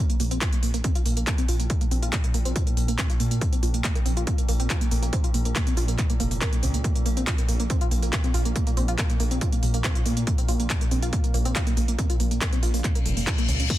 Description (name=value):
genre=driving peak-time techno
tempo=140 BPM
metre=4/4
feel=straight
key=Bb minor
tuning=A4 = 440 Hz
part: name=tight sequenced synth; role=riff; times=0.0-13.8 s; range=A3 to Bb4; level=-31 LUFS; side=right 2 dB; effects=chorus, sidechain pumping, tape echo
part: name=metallic inharmonic drone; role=drone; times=0.7-13.8 s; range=Bb2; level=-34 LUFS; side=right 2 dB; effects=chorus, built-in reverb, sidechain pumping
part: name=deep dark ambient pad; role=texture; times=0.1-13.8 s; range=Db4 to Bb5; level=-45 LUFS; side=right 2 dB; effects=none
part: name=techno drum kit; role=drums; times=0.1-13.8 s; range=crash cymbal, handclaps, hi-hat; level=-30 LUFS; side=equal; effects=none
part: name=dark detuned saw bass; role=bass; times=0.2-13.7 s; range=F1 to Bb2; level=-26 LUFS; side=equal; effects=sidechain pumping
part: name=electronic kick drum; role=drums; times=0.4-13.8 s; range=none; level=-24 LUFS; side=equal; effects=none
part: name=reverse cymbal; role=sound effects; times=13.0-13.7 s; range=none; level=-30 LUFS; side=left 6 dB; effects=none
room=digital ambience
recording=dense, heavily limited modern master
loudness=-22 LUFS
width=side -14 dB against mid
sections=0.0-13.8 A section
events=filter sweep on synth arpeggio sound 0.0-13.8; reverse cymbal 13.0-13.7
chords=0.0 Bbm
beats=0.41 0.84 1.27 | 1.70 2.13 2.56 2.98 | 3.41 3.84 4.27 4.70 | 5.13 5.56 5.99 6.41 | 6.84 7.27 7.70 8.13 | 8.56 8.98 9.41 9.84 | 10.27 10.70 11.13 11.56 | 11.98 12.41 12.84 13.27 | 13.70